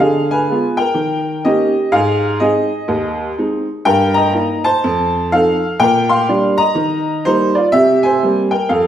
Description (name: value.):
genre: jazz, stride piano.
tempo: 124 BPM.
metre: 4/4.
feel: swing 62% on 8ths.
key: Eb major from 3.9 s.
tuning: A4 = 440 Hz.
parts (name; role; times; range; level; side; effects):
clear upright piano; solo; 0.0-8.9 s; Eb2 to C6; -13 LUFS; equal; none.
room: wet large studio reverb, RT60 1.1 s.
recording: band playing live in one room.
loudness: -13 LUFS.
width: side -10 dB against mid.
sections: 0.0-8.9 A section.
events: none.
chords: 0.0 Ddim7; 1.0 Eb7; 1.9 Ab; 3.9 Eb/G; 4.8 F7; 5.8 Bb69; 6.8 Eb; 7.7 C5.